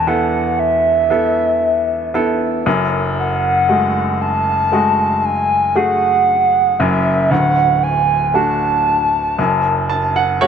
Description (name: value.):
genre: pop.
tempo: 58 BPM.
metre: 4/4.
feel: straight.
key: F# minor.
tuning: A4 = 437 Hz.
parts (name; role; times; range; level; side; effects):
hollow clarinet-like synth lead; melody; 0.0-10.5 s; E5 to A5; -15 LUFS; right 1 dB; chorus, phaser.
clear baby grand piano; accompaniment; 0.0-10.5 s; D1 to A5; -17 LUFS; equal; none.
room: moderate plate reverb, RT60 3.6 s.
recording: nothing above 10.8 kHz.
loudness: -13 LUFS.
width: side -7 dB against mid.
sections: 0.0-10.5 A section.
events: grand piano fill 9.4-10.5.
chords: 0.0 Esus4; 2.7 F#madd9; 7.3 D; 9.4 F#m.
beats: 0.07 1.11 2.14 | 3.18 4.21 5.25 6.28 | 7.31 8.35 9.38 10.42.